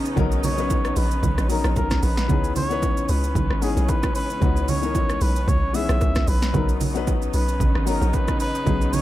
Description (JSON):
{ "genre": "amapiano", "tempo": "113 BPM", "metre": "4/4", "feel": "swing 55% on 16ths", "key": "C# dorian", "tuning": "A4 = 440 Hz", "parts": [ { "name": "warm grand piano", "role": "accompaniment", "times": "0.0-9.0 s", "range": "D#3 to C#5", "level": "-28 LUFS", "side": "left 8 dB", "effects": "none" }, { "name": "muted studio string section", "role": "sustained chords", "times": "0.0-9.0 s", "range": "C#3 to D#4", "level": "-31 LUFS", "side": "right 1 dB", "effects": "none" }, { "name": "deep house drum kit", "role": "drums", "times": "0.1-9.0 s", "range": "hi-hat, kick drum, rim click, shaker, snare drum", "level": "-25 LUFS", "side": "equal", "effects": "none" }, { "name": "hollow log drum bass", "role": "bass", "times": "0.2-9.0 s", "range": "G#1 to C#2", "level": "-23 LUFS", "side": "equal", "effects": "none" }, { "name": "congas and bongos", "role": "percussion", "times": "0.2-9.0 s", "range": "none", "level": "-29 LUFS", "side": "right 6 dB", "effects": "none" }, { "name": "trumpet with cup mute", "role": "melody", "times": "0.4-9.0 s", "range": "G#4 to E5", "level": "-28 LUFS", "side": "equal", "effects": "digital delay" } ], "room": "little or no reverb", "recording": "none", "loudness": "-19 LUFS", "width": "side -14 dB against mid", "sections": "0.0-9.0 A section", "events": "none", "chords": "0.0 Bmaj9; 2.3 C#m7; 6.5 Bmaj9", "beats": "| 0.17 0.70 1.23 1.76 | 2.29 2.83 3.36 3.89 | 4.42 4.95 5.48 6.01 | 6.54 7.07 7.61 8.14 | 8.67" }